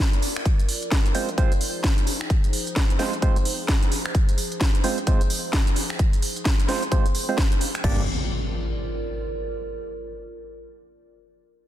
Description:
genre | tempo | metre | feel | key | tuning
bass house | 130 BPM | 4/4 | swing 61% on 16ths | unclear | A4 = 439 Hz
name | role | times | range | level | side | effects
warbly tape-like pad | texture | 0.0-9.6 s | F3 to D5 | -34 LUFS | equal | chorus, built-in reverb, sidechain pumping
garage drum kit | drums | 0.1-8.0 s | crash cymbal, finger snaps, hi-hat, snare drum | -27 LUFS | equal | none
electronic kick drum | drums | 0.5-8.0 s | none | -21 LUFS | equal | none
percussive organ stab | stabs | 1.1-8.0 s | Ab3 to D5 | -29 LUFS | right 4 dB | chorus, sidechain pumping, dub echo
growling FM bass | bass | 7.8-8.1 s | G1 | -27 LUFS | equal | tube saturation, sidechain pumping
impact | sound effects | 7.8-9.7 s | none | -30 LUFS | left 1 dB | none
room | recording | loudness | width
little or no reverb | dense, heavily limited modern master | -21 LUFS | side -12 dB against mid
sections
0.0-7.8 A section; 7.8-9.7 B section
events
fade-out on ambient pad 0.0-7.8; filter sweep on synth stab 0.0-7.8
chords
0.5 Fm; 7.8 Gm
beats
| 0.46 0.92 1.38 1.84 | 2.30 2.76 3.22 3.69 | 4.15 4.61 5.07 5.53 | 5.99 6.46 6.92 7.38 | 7.84 8.30 8.76 9.22

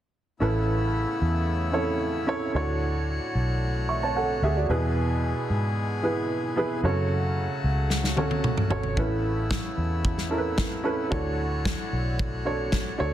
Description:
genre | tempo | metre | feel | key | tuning
piano-driven pop | 112 BPM | 4/4 | straight | A major | A4 = 438 Hz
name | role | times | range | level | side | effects
warm upright piano | accompaniment | 0.4-13.1 s | A2 to C#6 | -27 LUFS | right 2 dB | none
accordion | sustained chords | 0.4-13.1 s | C#3 to C#5 | -34 LUFS | left 3 dB | none
vintage muted fingered electric bass | bass | 0.4-13.1 s | G#1 to G#2 | -28 LUFS | equal | none
natural country drum kit | drums | 7.9-12.9 s | kick drum, snare drum, toms | -27 LUFS | equal | none
room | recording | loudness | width
light reverb | dense, heavily limited modern master | -24 LUFS | side -12 dB against mid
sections
0.4-13.1 A section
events
drum fill 7.9-9.0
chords
0.4 Aadd9; 2.5 Dmaj7; 4.7 E; 6.8 F#m; 9.0 Aadd9; 11.1 Dmaj7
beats
| 0.40 0.94 1.48 2.01 | 2.55 3.08 3.62 4.15 | 4.69 5.23 5.76 6.30 | 6.83 7.37 7.91 8.44 | 8.98 9.51 10.05 10.58 | 11.12 11.65 12.19 12.73

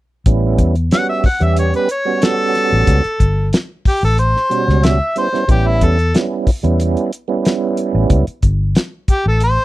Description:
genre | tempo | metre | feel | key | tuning
straight-eighth soul blues | 92 BPM | 4/4 | straight | A mixolydian | A4 = 440 Hz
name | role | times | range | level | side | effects
tonewheel organ | accompaniment | 0.3-8.3 s | B2 to G4 | -18 LUFS | right 5 dB | slow rotary speaker, overdrive, chorus vibrato
vintage muted fingered electric bass | bass | 0.3-9.6 s | G1 to E2 | -14 LUFS | left 1 dB | none
cloth-damped thuddy drum kit | drums | 0.3-9.6 s | hi-hat, kick drum, snare drum | -15 LUFS | equal | none
warm harmonica | melody | 0.9-9.6 s | E4 to F#5 | -17 LUFS | left 1 dB | overdrive
room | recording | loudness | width
little or no reverb | dry, close 1970s-style studio recording | -13 LUFS | side -16 dB against mid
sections
0.3-9.6 A section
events
none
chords
0.3 A9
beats
| 0.26 0.91 1.57 2.22 | 2.87 3.53 4.18 4.83 | 5.49 6.14 6.80 7.45 | 8.11 8.76 9.41

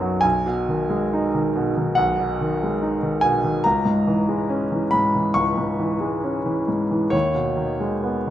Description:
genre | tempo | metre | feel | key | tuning
classical, romantic nocturne for solo piano | 65-73 BPM | 4/4 | rubato | G# minor | A4 = 437 Hz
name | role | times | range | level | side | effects
clear concert grand piano | solo | 0.0-8.3 s | B1 to C#6 | -19 LUFS | equal | none
room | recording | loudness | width
moderate recital hall reverb, RT60 1.4 s | none | -19 LUFS | side -12 dB against mid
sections
0.0-8.3 A section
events
none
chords
0.2 G#m/B; 3.6 C#m; 7.1 G#m/D#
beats
| 0.24 1.13 1.99 2.82 | 3.65 4.51 5.36 6.25 | 7.14 8.04

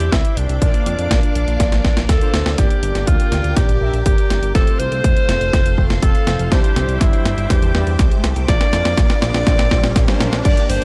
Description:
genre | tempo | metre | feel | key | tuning
italo disco | 122 BPM | 4/4 | straight | unclear | A4 = 438 Hz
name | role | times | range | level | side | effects
bright alto saxophone | melody | 0.0-10.8 s | D4 to D5 | -25 LUFS | equal | tape echo
string machine, full ensemble | sustained chords | 0.0-10.8 s | Bb3 to D6 | -32 LUFS | equal | phaser, ensemble chorus
analog synth brass | stabs | 0.0-10.8 s | G3 to F5 | -30 LUFS | equal | chorus
fat analog bass | bass | 0.0-10.8 s | F1 to F2 | -22 LUFS | equal | tube saturation
clean 12-bit digital drum machine | drums | 0.0-10.8 s | crash cymbal, hi-hat, snare drum | -24 LUFS | equal | none
electronic kick drum | drums | 0.1-10.6 s | none | -18 LUFS | equal | overdrive
riser and swell | sound effects | 6.4-10.5 s | none | -32 LUFS | equal | none
room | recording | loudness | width
digital ambience | dry, gritty hardware recording, cassette tape | -16 LUFS | mono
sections
0.0-2.6 A section; 2.6-10.5 B section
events
drum fill 1.6-2.6, 2.6-10.5; band accent 2.5; swell 9.5-10.5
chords
0.0 Cadd9; 0.6 Bb; 2.6 Gm; 4.6 F; 6.5 Cadd9; 8.5 Bb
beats
0.12 | 0.62 1.11 1.60 2.09 | 2.58 3.08 3.57 4.06 | 4.55 5.04 5.53 6.03 | 6.52 7.01 7.50 7.99 | 8.48 8.98 9.47 9.96 | 10.45

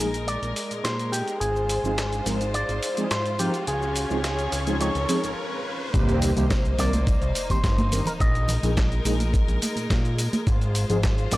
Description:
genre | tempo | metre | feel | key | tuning
nu-disco, nu disco | 106 BPM | 4/4 | straight | C minor | A4 = 440 Hz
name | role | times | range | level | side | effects
electric guitar with an envelope filter | melody | 0.0-11.4 s | G4 to Eb5 | -30 LUFS | equal | analog delay
mellow synth brass | accompaniment | 0.0-11.4 s | Eb3 to Bb4 | -28 LUFS | equal | chorus
clear symphonic string section | sustained chords | 0.0-11.4 s | Ab3 to Db5 | -31 LUFS | left 1 dB | sidechain pumping, low-pass filter
fat analog bass | bass | 0.0-11.4 s | G1 to Bb2 | -26 LUFS | equal | none
dusty soul sampler-style drum kit | drums | 0.0-11.4 s | cabasa, hi-hat, snare drum | -31 LUFS | equal | high-pass filter on hats, high-pass filter on perc, high-pass filter on snare
riser and sub drop | sound effects | 0.8-8.2 s | none | -34 LUFS | equal | none
electronic kick drum | drums | 5.9-11.2 s | none | -23 LUFS | equal | none
tambourine and congas | percussion | 6.0-11.4 s | none | -32 LUFS | right 2 dB | none
room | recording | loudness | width
light reverb | dry, gritty hardware recording, transformer saturation | -22 LUFS | side -18 dB against mid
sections
0.0-5.9 A section; 5.9-11.4 B section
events
build-up 0.0-5.9; riser 0.8-5.9; break 5.4-5.9; drop 5.9-11.4; impact 5.9-8.2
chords
0.0 Bb7sus4; 1.4 Ab6; 3.7 Dbmaj7; 5.9 Cm7; 8.2 Bb7sus4; 10.5 Ab6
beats
0.28 0.85 | 1.41 1.98 2.54 3.11 | 3.68 4.24 4.81 5.37 | 5.94 6.51 7.07 7.64 | 8.20 8.77 9.34 9.90 | 10.47 11.03

